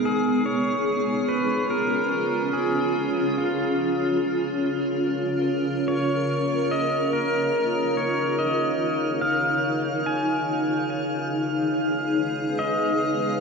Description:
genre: ambient.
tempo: 72 BPM.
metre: 4/4.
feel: straight.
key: Db mixolydian.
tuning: A4 = 445 Hz.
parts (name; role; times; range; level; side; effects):
pedal steel guitar; melody; 0.0-13.4 s; F4 to Ab5; -26 LUFS; equal; ping-pong delay.
granular cloud pad; sustained chords; 0.0-13.4 s; Cb4 to Cb5; -24 LUFS; equal; built-in reverb.
muted felt-like synth keys; arpeggios; 0.0-0.6 s; Ab3; -37 LUFS; right 2 dB; none.
overtone-sweeping drone; drone; 0.0-13.4 s; Db3; -33 LUFS; left 1 dB; chorus, built-in reverb.
drifting glass-harmonics texture; texture; 0.5-13.4 s; F6; -37 LUFS; right 4 dB; chorus, built-in reverb.
room: wet huge ambient reverb, RT60 8.1 s.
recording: worn, warbling old tape, cassette tape, warbly pitch drift.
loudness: -22 LUFS.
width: side -4 dB against mid.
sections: 0.1-13.4 A section.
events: none.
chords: 0.0 Db; 3.4 Bbm; 6.7 Ebsus2; 10.1 Db.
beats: | 0.06 0.89 1.72 2.56 | 3.39 4.22 5.05 5.89 | 6.72 7.55 8.39 9.22 | 10.05 10.89 11.72 12.55 | 13.39.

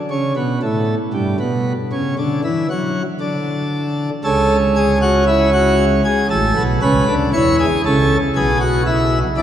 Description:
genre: classical, baroque-style 3-part fugue for pipe organ.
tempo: 58 BPM.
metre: 4/4.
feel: straight.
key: unclear.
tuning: A4 = 438 Hz.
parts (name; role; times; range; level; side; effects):
pipe organ, plenum; solo; 0.1-9.4 s; A1 to C#5; -14 LUFS; equal; none.
room: wet cathedral reverb, RT60 4.3 s.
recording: none.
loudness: -14 LUFS.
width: side -10 dB against mid.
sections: 0.0-9.4 A section.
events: none.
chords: 0.0 N.C.; 4.2 A/C#; 6.3 A; 8.4 E/B.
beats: | 0.11 1.15 2.18 3.22 | 4.25 5.28 6.30 7.33 | 8.36 9.38.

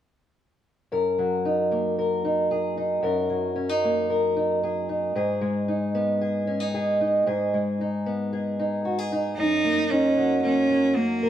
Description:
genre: folk.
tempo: 114 BPM.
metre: 4/4.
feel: straight.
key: F# major.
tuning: A4 = 436 Hz.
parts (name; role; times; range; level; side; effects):
fingerpicked acoustic archtop guitar; accompaniment; 0.9-11.3 s; F#2 to A#4; -23 LUFS; equal; none.
clear cello; melody; 9.4-11.3 s; A#3 to D#4; -20 LUFS; right 2 dB; none.
room: wet stone room reverb, RT60 1.3 s.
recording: band playing live in one room.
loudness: -22 LUFS.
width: side -10 dB against mid.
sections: 0.9-9.4 A section; 9.4-11.3 B section.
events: none.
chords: 0.9 F#6; 5.2 G#m; 9.4 F#6.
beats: | 0.92 1.45 1.98 2.51 | 3.04 3.56 4.09 4.62 | 5.15 5.68 6.21 6.74 | 7.26 7.79 8.32 8.85 | 9.38 9.90 10.43 10.96.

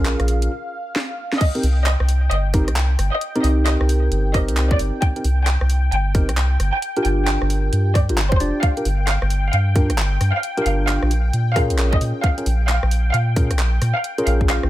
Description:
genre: UK garage, two-step garage.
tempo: 133 BPM.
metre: 4/4.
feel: swing 63% on 16ths.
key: C minor.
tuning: A4 = 440 Hz.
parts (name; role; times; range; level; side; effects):
warm analog pad; sustained chords; 0.0-14.7 s; F5 to G5; -31 LUFS; left 1 dB; chorus, sidechain pumping.
tine electric piano; stabs; 0.0-14.7 s; C4 to D5; -24 LUFS; equal; phaser, dub echo.
soft dub sub bass; bass; 0.0-14.7 s; F1 to Bb2; -18 LUFS; equal; sidechain pumping.
warbly tape-like pad; texture; 0.5 s; none; barely audible; none; none.
garage drum kit; drums; 0.1-14.7 s; crash cymbal, handclaps, hi-hat, rim click, snare drum; -26 LUFS; right 1 dB; overdrive.
rich studio violin section; melody; 1.4-14.7 s; C5 to G5; -26 LUFS; equal; ping-pong delay.
electronic kick drum; drums; 1.4-14.5 s; none; -18 LUFS; equal; overdrive.
room: digital ambience.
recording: none.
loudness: -17 LUFS.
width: side -15 dB against mid.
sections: 0.0-1.4 A section; 1.4-14.7 B section.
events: break 0.5-1.4; drum fill 1.0-1.4; drop 1.4-14.7.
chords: 0.0 Bbm7; 1.4 Cm7; 6.8 Gm7; 11.1 Bbm7.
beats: 0.06 0.51 0.96 | 1.41 1.86 2.31 2.76 | 3.21 3.67 4.12 4.57 | 5.02 5.47 5.92 6.37 | 6.82 7.27 7.72 8.18 | 8.63 9.08 9.53 9.98 | 10.43 10.88 11.33 11.79 | 12.24 12.69 13.14 13.59 | 14.04 14.49.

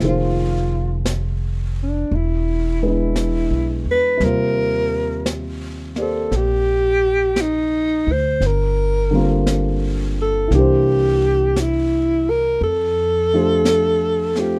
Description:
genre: jazz ballad.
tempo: 57 BPM.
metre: 4/4.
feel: swing 68% on 8ths.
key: F major.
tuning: A4 = 439 Hz.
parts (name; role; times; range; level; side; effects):
breathy alto saxophone; melody; 0.0-14.6 s; D4 to C5; -21 LUFS; equal; none.
dark grand piano; accompaniment; 0.0-14.6 s; C3 to D5; -25 LUFS; equal; none.
upright bass; bass; 0.0-14.6 s; E1 to F2; -24 LUFS; equal; none.
vintage brush drum kit; drums; 0.0-14.6 s; brushed snare drum, hi-hat, snare drum; -31 LUFS; equal; none.
room: light reverb.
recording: rough home demo mix.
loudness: -19 LUFS.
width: mono.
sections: 0.0-14.6 A section.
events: none.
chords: 0.0 Fm7; 2.1 E7; 4.2 Eb69; 8.4 Gm7; 10.5 C7; 12.6 F69.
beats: | 0.01 1.05 2.10 3.16 | 4.21 5.26 6.31 7.36 | 8.41 9.46 10.51 11.56 | 12.61 13.66.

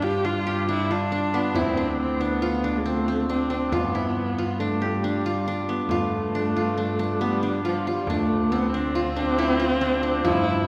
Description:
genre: contemporary instrumental, chamber music in an uneven meter.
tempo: 138 BPM.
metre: 5/4.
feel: straight.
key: unclear.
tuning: A4 = 441 Hz.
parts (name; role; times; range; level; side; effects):
warm viola; second line; 0.0-10.7 s; F3 to G4; -28 LUFS; equal; none.
qanun; arpeggios; 0.0-10.7 s; F3 to G4; -28 LUFS; equal; none.
muted cello; bass; 0.0-10.7 s; D2 to G2; -32 LUFS; equal; none.
frame drum; percussion; 0.2-10.5 s; none; -38 LUFS; equal; none.
room: wet concert hall reverb, RT60 2.4 s.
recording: recorded in a church or concert hall.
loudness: -24 LUFS.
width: mono.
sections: 0.0-5.9 A section; 5.9-10.7 B section.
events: none.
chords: 0.0 G7; 1.5 Dm7; 3.7 G7; 8.1 Dm7.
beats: 0.24 0.68 1.11 | 1.55 1.98 2.42 2.85 3.29 | 3.72 4.16 4.59 5.03 5.46 | 5.90 6.33 6.77 7.21 7.64 | 8.08 8.51 8.95 9.38 9.82 | 10.26.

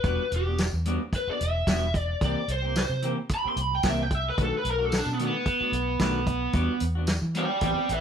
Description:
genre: straight-eighth soul blues.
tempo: 111 BPM.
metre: 4/4.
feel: straight.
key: E minor.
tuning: A4 = 439 Hz.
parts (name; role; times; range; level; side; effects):
lead guitar through a small cranked amp; melody; 0.0-8.0 s; B3 to C6; -27 LUFS; right 1 dB; overdrive.
clean electric guitar; stabs; 0.0-7.9 s; D#3 to G4; -33 LUFS; left 2 dB; none.
vintage muted fingered electric bass; bass; 0.0-8.0 s; E1 to E3; -29 LUFS; equal; none.
warm soul drum kit; drums; 0.0-8.0 s; hi-hat, kick drum, snare drum, tambourine; -28 LUFS; equal; none.
room: moderate studio reverb, RT60 0.6 s.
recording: band playing live in one room.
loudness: -24 LUFS.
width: side -8 dB against mid.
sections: 0.0-8.0 A section.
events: lead electric guitar solo 0.0-8.0.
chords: 0.0 Em9; 2.2 C7; 4.4 B7#9; 6.5 Em9.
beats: | 0.05 0.59 1.13 1.67 | 2.21 2.76 3.30 3.84 | 4.38 4.92 5.46 6.00 | 6.54 7.08 7.62.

